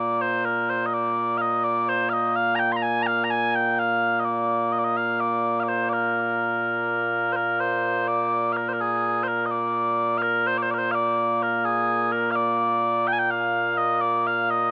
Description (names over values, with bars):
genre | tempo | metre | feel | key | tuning
scottish traditional, Scottish pipe music | 84 BPM (dotted quarters) | 6/8 | straight | Bb mixolydian | A4 = 440 Hz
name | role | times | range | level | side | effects
mellow small bagpipes | solo | 0.0-14.7 s | Bb2 to C6 | -23 LUFS | equal | none
room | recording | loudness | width
little or no reverb | recorded outdoors, with no room sound | -24 LUFS | mono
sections
0.0-7.4 A section; 7.4-14.7 B section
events
none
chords
none